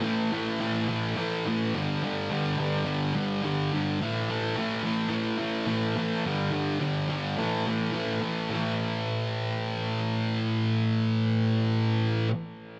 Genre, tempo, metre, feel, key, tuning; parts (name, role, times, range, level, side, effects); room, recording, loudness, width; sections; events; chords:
rock; 106 BPM; 4/4; straight; A4 = 445 Hz
thick fuzz guitar; solo; 0.0-12.3 s; G2 to A3; -28 LUFS; equal; distortion
moderate club reverb, RT60 0.7 s; faint mains hum; -28 LUFS; mono
0.0-8.5 A section; 8.5-10.8 B section
0.0 A5; 1.8 G5; 4.0 A5; 6.3 G5; 7.4 A5